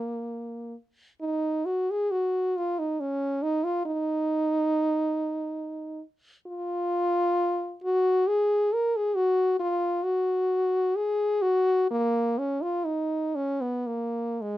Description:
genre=classical, free, expressive piece for unaccompanied French horn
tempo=67 BPM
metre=3/4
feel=uneven beats, rubato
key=unclear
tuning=A4 = 440 Hz
part: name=clear French horn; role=solo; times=0.0-14.6 s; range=G#3 to A#4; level=-24 LUFS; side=equal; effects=none
room=little or no reverb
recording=close, detailed microphones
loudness=-24 LUFS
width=side -14 dB against mid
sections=0.0-14.6 A section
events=none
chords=none

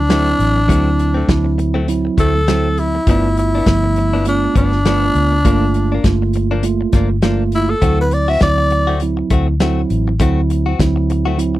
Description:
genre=straight-eighth soul blues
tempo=101 BPM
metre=4/4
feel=swing 55% on 16ths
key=D mixolydian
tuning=A4 = 436 Hz
part: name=growling tenor saxophone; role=melody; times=0.0-9.0 s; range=D4 to E5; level=-17 LUFS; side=left 1 dB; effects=slapback echo
part: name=vintage muted fingered electric bass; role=bass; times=0.0-11.6 s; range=G1 to D2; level=-17 LUFS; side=left 1 dB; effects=none
part: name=mellow tine electric piano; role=accompaniment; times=0.1-11.6 s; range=F3 to F4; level=-20 LUFS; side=right 6 dB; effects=none
part: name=direct-recorded clean electric guitar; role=stabs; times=0.1-11.6 s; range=F3 to F#4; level=-23 LUFS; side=left 5 dB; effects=none
part: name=warm soul drum kit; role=drums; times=0.1-11.5 s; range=hi-hat, kick drum, snare drum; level=-17 LUFS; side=left 1 dB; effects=none
room=light reverb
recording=none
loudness=-13 LUFS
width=side -15 dB against mid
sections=0.0-11.6 A section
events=none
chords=0.0 D7; 3.1 G7; 5.5 Gm7; 7.8 D7

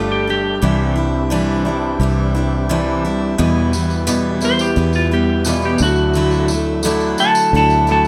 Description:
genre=folk rock and heartland rock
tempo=87 BPM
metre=4/4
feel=straight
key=unclear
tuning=A4 = 440 Hz
part: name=clean lap steel guitar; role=melody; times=0.0-8.1 s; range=F4 to A5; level=-20 LUFS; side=equal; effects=none
part: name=picked steel-string acoustic guitar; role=accompaniment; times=0.0-8.1 s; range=E2 to G4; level=-22 LUFS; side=equal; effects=none
part: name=tonewheel organ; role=sustained chords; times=0.0-8.1 s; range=F#3 to A4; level=-32 LUFS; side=equal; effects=none
part: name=electric guitar through a small old amp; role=riff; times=0.0-8.1 s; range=E2 to G4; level=-23 LUFS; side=equal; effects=none
part: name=fingered electric bass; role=bass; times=0.0-8.1 s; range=G1 to E2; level=-22 LUFS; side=equal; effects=none
part: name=tambourine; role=percussion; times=3.7-8.1 s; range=none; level=-30 LUFS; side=equal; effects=none
room=studio reverb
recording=none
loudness=-16 LUFS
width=mono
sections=0.0-8.1 A section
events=electric slide guitar solo 0.0-8.1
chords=0.0 Gsus2; 0.6 Cadd9; 3.4 Em; 5.8 Dadd9

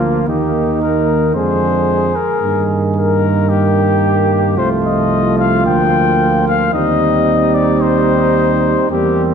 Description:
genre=classical, brass quintet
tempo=111 BPM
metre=4/4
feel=straight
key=Eb major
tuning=A4 = 440 Hz
part: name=mellow trumpet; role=melody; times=0.0-9.3 s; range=F4 to G5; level=-17 LUFS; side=left 7 dB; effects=none
part: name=mellow trumpet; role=second line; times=0.0-9.3 s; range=Bb3 to Ab4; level=-20 LUFS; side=right 7 dB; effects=none
part: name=bright trombone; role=accompaniment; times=0.0-9.3 s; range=D3 to G3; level=-21 LUFS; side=right 4 dB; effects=none
part: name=clear French horn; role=accompaniment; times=0.0-9.3 s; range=Ab3 to C4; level=-20 LUFS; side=left 3 dB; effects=none
part: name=mellow tuba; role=bass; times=0.0-9.3 s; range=C2 to G2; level=-17 LUFS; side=right 3 dB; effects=none
room=moderate concert hall reverb, RT60 2.0 s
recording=dark, warm production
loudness=-12 LUFS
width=side -7 dB against mid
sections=0.0-9.3 A section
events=none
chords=0.3 Eb; 1.4 Ddim/F; 2.4 Eb/G; 4.6 F7/C; 5.7 Bb/D; 6.7 Cm/Eb

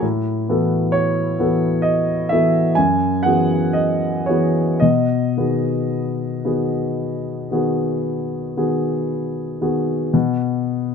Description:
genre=classical, impressionist solo piano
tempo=54-68 BPM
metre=5/4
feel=rubato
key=B mixolydian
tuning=A4 = 440 Hz
part: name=warm grand piano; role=solo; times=0.0-10.9 s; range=F#2 to G#5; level=-17 LUFS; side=left 1 dB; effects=none
room=light reverb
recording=dark, warm production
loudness=-17 LUFS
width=side -6 dB against mid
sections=0.0-10.1 A section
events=none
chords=0.0 A69; 2.8 F#9sus4; 4.8 B6; 10.1 N.C.

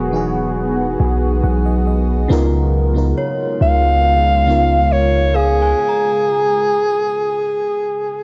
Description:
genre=R&B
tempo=69 BPM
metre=4/4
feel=straight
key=unclear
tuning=A4 = 440 Hz
part: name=FM electric piano with soft pad layer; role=accompaniment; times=0.0-5.8 s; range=C#3 to G#5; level=-24 LUFS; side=equal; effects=chorus, phaser, cassette tape
part: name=deep dark ambient pad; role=sustained chords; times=0.0-5.7 s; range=C#3 to A#4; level=-26 LUFS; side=equal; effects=chorus, built-in reverb, cassette tape
part: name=long sustained 808-style bass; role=bass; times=0.0-5.7 s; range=E1 to C#2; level=-19 LUFS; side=equal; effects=none
part: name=synth chime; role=texture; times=3.2-6.7 s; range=C#5 to A#5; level=-28 LUFS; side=equal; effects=ensemble chorus, cassette tape, tape echo
part: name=breathy alto saxophone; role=melody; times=3.6-8.2 s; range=G#4 to E#5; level=-18 LUFS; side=equal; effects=cassette tape, tape echo
room=light reverb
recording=home recording on cassette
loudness=-16 LUFS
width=mono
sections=0.0-8.2 A section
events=FM electric piano fill 0.6-2.3; stop 5.8-8.2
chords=0.0 Emaj9; 2.3 C#13; 5.8 F#add9 (rootless)

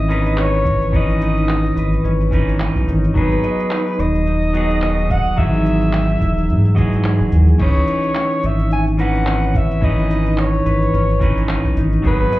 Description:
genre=sunset chillout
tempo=108 BPM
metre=4/4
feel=swing 57% on 16ths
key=unclear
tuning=A4 = 440 Hz
part: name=breathy soprano saxophone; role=melody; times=0.0-12.4 s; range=B4 to G#5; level=-22 LUFS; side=left 1 dB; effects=tape echo
part: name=clean electric guitar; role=accompaniment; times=0.0-12.4 s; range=E3 to E5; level=-21 LUFS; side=right 1 dB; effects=auto-pan
part: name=concert harp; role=arpeggios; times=0.0-12.4 s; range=C#4 to D#5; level=-24 LUFS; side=left 1 dB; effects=tape echo
part: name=round analog bass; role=bass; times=0.0-12.3 s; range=D#1 to G#2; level=-17 LUFS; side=equal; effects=tube saturation
part: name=smooth R&B drum kit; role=drums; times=0.1-12.4 s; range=cabasa, crash cymbal, handclaps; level=-29 LUFS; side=equal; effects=none
part: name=electronic kick drum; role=drums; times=0.7-12.2 s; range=none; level=-19 LUFS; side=equal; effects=none
room=light reverb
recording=heard muffled through a wall, club reverb, EQ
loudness=-14 LUFS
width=side -17 dB against mid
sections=0.0-12.4 A section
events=none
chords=0.0 C#m9; 3.2 G#m7; 5.4 Emaj9; 7.6 C#m9

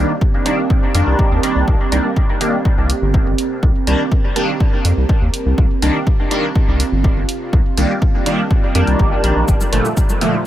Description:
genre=dub techno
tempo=123 BPM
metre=4/4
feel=straight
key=C minor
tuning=A4 = 440 Hz
part: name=deep dark ambient pad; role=sustained chords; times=0.0-10.5 s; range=Bb3 to C5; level=-24 LUFS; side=right 5 dB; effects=chorus, built-in reverb, sidechain pumping
part: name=resonant sweep polysynth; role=stabs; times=0.0-10.4 s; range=Bb2 to D4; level=-19 LUFS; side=equal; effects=chorus, phaser, sidechain pumping, dub echo
part: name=round analog bass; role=bass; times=0.0-9.8 s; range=G1 to F2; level=-17 LUFS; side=equal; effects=tube saturation, sidechain pumping
part: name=electronic kick drum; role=drums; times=0.2-10.1 s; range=none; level=-16 LUFS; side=equal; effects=none
part: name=electronic hi-hat and shaker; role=drums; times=0.5-10.3 s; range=none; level=-23 LUFS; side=right 1 dB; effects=none
part: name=congas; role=percussion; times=9.6-10.4 s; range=none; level=-27 LUFS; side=right 2 dB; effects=sidechain pumping on perc
room=little or no reverb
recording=none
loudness=-13 LUFS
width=side -13 dB against mid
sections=0.0-10.5 A section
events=none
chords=0.0 Cm7; 9.5 Gm7

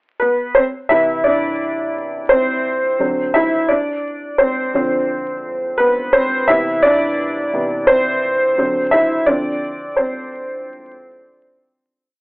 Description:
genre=hip hop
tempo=86 BPM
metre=4/4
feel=swing 57% on 16ths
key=unclear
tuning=A4 = 436 Hz
part: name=warm upright piano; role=solo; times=0.2-12.1 s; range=C3 to E5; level=-15 LUFS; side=equal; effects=cassette tape, low-pass filter
room=moderate studio reverb, RT60 0.6 s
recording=vinyl crackle, telephone sound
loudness=-14 LUFS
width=side -29 dB against mid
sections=0.0-0.9 pickup bar; 0.9-12.1 A section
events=upright piano solo 0.9-12.1; fade-out 9.3-12.1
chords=0.0 N.C.; 0.9 Cmaj7; 3.0 D7; 3.7 Dm7; 6.5 Cmaj7; 8.6 D7; 9.3 Dm7

